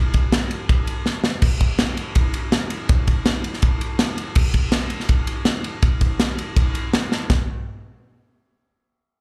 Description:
rock; 164 BPM; 4/4; straight
modern studio drum kit; drums; 0.1-7.4 s; crash cymbal, kick drum, ride cymbal, snare drum, splash cymbal; -21 LUFS; equal
little or no reverb; live gig heard through the venue's PA, club reverb; -21 LUFS; mono
0.0-7.3 A section; 7.3-8.8 B section
drum fill 1.1-1.4, 7.1
0.33 0.69 1.06 | 1.43 1.79 2.16 2.53 | 2.89 3.26 3.63 3.99 | 4.36 4.73 5.09 5.46 | 5.83 6.19 6.56 6.93 | 7.29

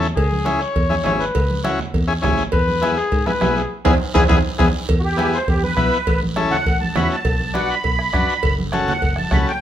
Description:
latin, cumbia; 203 BPM; 4/4; straight; A4 = 441 Hz
combo organ; accompaniment; 0.0-9.5 s; B3 to B4; -22 LUFS; left 3 dB
fingered electric bass; bass; 0.0-9.4 s; F#1 to G#2; -23 LUFS; equal
guiro; percussion; 0.0-9.6 s; -36 LUFS; right 4 dB
mellow trumpet; second line; 0.2-4.7 s; G#4 to C#5; -22 LUFS; left 3 dB
bombo; percussion; 0.2-9.5 s; -22 LUFS; equal
congas; percussion; 0.2-9.5 s; -27 LUFS; right 2 dB
cowbell and timbales; percussion; 0.2-9.2 s; -26 LUFS; right 4 dB
musette accordion; melody; 5.0-9.6 s; F#4 to B5; -22 LUFS; right 2 dB
moderate large studio reverb, RT60 0.9 s; minimal, uncompressed stereo recording; -16 LUFS; side -11 dB against mid
0.0-4.9 A section; 4.9-9.6 B section
trumpet solo 0.0-4.9; drum fill 3.7-4.9; band accent 3.7-4.9; accordion solo 4.9-9.6
0.2 C#m; 2.5 E; 6.1 A; 7.3 Bm; 8.4 F#m
| 0.17 0.46 0.76 1.05 | 1.35 1.64 1.94 2.23 | 2.53 2.82 3.12 3.41 | 3.71 4.00 4.30 4.59 | 4.89 5.18 5.48 5.78 | 6.07 6.37 6.66 6.96 | 7.25 7.55 7.84 8.14 | 8.43 8.73 9.02 9.32

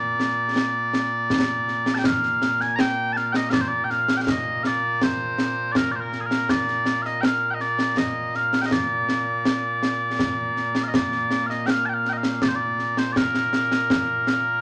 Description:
scottish traditional, Scottish pipe music; 81 BPM; 3/4; straight; Bb major; A4 = 439 Hz
mellow small bagpipes; melody; 0.0-14.6 s; Bb2 to Bb5; -25 LUFS; equal
concert snare drum and concert bass drum; drums; 0.2-14.4 s; -26 LUFS; equal
wet studio reverb, RT60 0.7 s; -23 LUFS; mono
0.0-14.6 A section
0.57 1.31 | 2.05 2.79 3.53 | 4.27 5.01 5.75 | 6.49 7.23 7.97 | 8.72 9.46 10.20 | 10.94 11.68 12.42 | 13.16 13.90

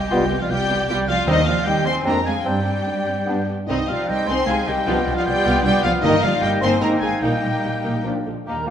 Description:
classical; 140-158 BPM; 3/4; rubato; A4 = 440 Hz
dark symphonic violin section; melody; 0.0-8.7 s; G4 to C6; -26 LUFS; left 3 dB
silver concert flute; second line; 0.0-8.7 s; Bb4 to Bb5; -27 LUFS; equal
warm oboe; second line; 0.0-8.7 s; G4 to C6; -29 LUFS; right 1 dB
warm symphonic violin section; second line; 0.0-8.7 s; Bb3 to C5; -28 LUFS; left 4 dB
rich studio cello section; bass; 0.0-8.7 s; Eb2 to C4; -27 LUFS; right 2 dB
warm symphonic double bass section; bass; 0.0-8.7 s; G1 to G2; -26 LUFS; right 3 dB
bright clarinet; second line; 0.1-8.7 s; D4 to Bb4; -30 LUFS; left 2 dB
warm bassoon; accompaniment; 0.1-8.7 s; Bb3 to C4; -29 LUFS; right 1 dB
warm symphonic viola section; accompaniment; 0.1-8.7 s; D3 to Bb4; -28 LUFS; equal
clear trombone section; sustained chords; 0.1-8.7 s; F2 to Bb3; -30 LUFS; right 3 dB
mellow French horn section; sustained chords; 0.1-8.7 s; F3 to F4; -29 LUFS; left 4 dB
timpani; percussion; 1.3-1.8 s; Eb3; -25 LUFS; equal
wet scoring stage reverb, RT60 1.9 s; -17 LUFS; side -9 dB against mid
0.0-8.5 A section
0.1 G7/C; 1.3 Cm/Eb; 2.1 Dm7b5/F; 2.5 Gsus4; 3.3 G; 3.7 Cm; 4.9 G7/C; 6.0 Eb/G; 6.8 Ab; 7.2 Eb/Bb; 8.0 Bb
| 0.12 0.51 0.90 | 1.28 1.67 2.06 | 2.46 2.87 3.28 | 3.69 4.09 4.48 | 4.87 5.26 5.64 | 6.02 6.42 6.81 | 7.22 7.63 8.05 | 8.46

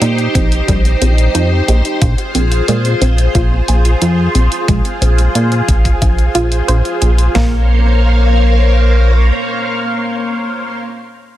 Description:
synthwave; 90 BPM; 4/4; straight; Bb dorian; A4 = 440 Hz
string machine, full ensemble; sustained chords; 0.0-10.8 s; Bb3 to F5; -17 LUFS; equal; phaser, ensemble chorus, sidechain pumping
analog pluck; arpeggios; 0.0-7.7 s; G3 to C5; -21 LUFS; right 2 dB; chorus, phaser, cassette tape, tape echo
chorused synth bass; bass; 0.0-9.3 s; Bb1 to Bb2; -11 LUFS; equal; tube saturation
electronic hi-hat; drums; 0.0-7.3 s; -21 LUFS; equal
detuned 8-bit digital drum machine; drums; 0.4-7.5 s; hi-hat, kick drum, snare drum, toms; -15 LUFS; equal
little or no reverb; dense, heavily limited modern master; -10 LUFS; side -13 dB against mid
0.0-7.3 A section; 7.3-10.0 B section
filter sweep on synth arpeggio sound 0.0-7.3
0.0 Cm/Bb; 2.0 Fm/Bb; 7.3 Bbmadd9
0.01 0.68 1.35 | 2.02 2.68 3.35 4.01 | 4.68 5.35 6.01 6.68 | 7.35 8.02 8.68 9.35

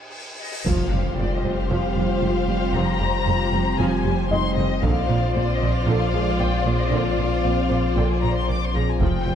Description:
cinematic, hybrid orchestral and electronic film score; 115 BPM; 4/4; straight; F dorian; A4 = 443 Hz
cymbal swell and impact; sound effects; 0.0-2.7 s; -31 LUFS; equal
felt-muted upright piano; texture; 0.0-9.3 s; Ab3 to F5; -33 LUFS; left 2 dB
dark symphonic violin section; melody; 0.4-9.3 s; D5 to D6; -29 LUFS; left 7 dB
rich symphonic violin section; second line; 0.7-9.3 s; F4 to C5; -29 LUFS; left 4 dB
warm symphonic viola section; accompaniment; 0.7-9.3 s; D3 to D5; -29 LUFS; right 1 dB
chorused pulse-width pad; sustained chords; 0.9-9.3 s; F3 to C5; -27 LUFS; left 1 dB; tremolo
bright symphonic double bass section; bass; 0.7-9.3 s; F1 to Bb1; -27 LUFS; right 3 dB
rich symphonic cello section; bass; 0.7-9.3 s; F2 to Bb2; -28 LUFS; right 3 dB
saturated sub bass; bass; 0.7-9.3 s; F1 to Bb1; -26 LUFS; equal
taiko ensemble; drums; 0.7-1.7, 4.8-5.9, 9.0-9.3 s; -28 LUFS; left 1 dB
moderate concert hall reverb, RT60 2.2 s; dark, warm production; -19 LUFS; side -9 dB against mid
0.7-9.3 A section
break 0.0-0.7; cymbal swell 0.0-0.7; impact 0.7-2.7
0.0 N.C.; 0.7 Fsus2; 4.8 Bbadd9
0.14 | 0.66 1.18 1.70 2.23 | 2.75 3.27 3.79 4.31 | 4.83 5.36 5.88 6.40 | 6.92 7.44 7.96 8.49 | 9.01

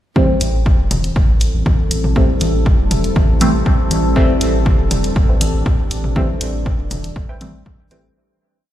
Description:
dub techno; 120 BPM; 4/4; straight; A minor; A4 = 442 Hz
deep dark ambient pad; sustained chords; 1.4-8.1 s; G3 to A4; -22 LUFS; left 1 dB; chorus, built-in reverb, vintage 12-bit sampler grit, sidechain pumping
deep mellow chord stab; stabs; 0.2-8.1 s; E3 to C4; -21 LUFS; equal; chorus, phaser, sidechain pumping, dub echo
electronic kick drum; drums; 0.2-7.8 s; -16 LUFS; equal
electronic congas and toms; percussion; 0.2-7.8 s; -25 LUFS; left 2 dB; overdrive, sidechain pumping on perc, sidechain pumping on toms, dub echo
round analog bass; bass; 0.4-8.1 s; E1 to A1; -19 LUFS; equal; sidechain pumping
electronic hi-hat; drums; 0.4-8.0 s; -25 LUFS; equal
warbly dusty pluck; riff; 5.3-8.1 s; B4 to G5; -36 LUFS; right 1 dB; chorus, sidechain pumping, dub echo
little or no reverb; played on a big sound system in a bare room, stone room reverb, lossy compression artefacts; -13 LUFS; side -12 dB against mid
0.2-8.2 groove
fade-out 5.5-8.2
0.2 Am7
| 0.16 0.66 1.16 1.66 | 2.16 2.66 3.16 3.66 | 4.16 4.66 5.16 5.66 | 6.16 6.66 7.16 7.66

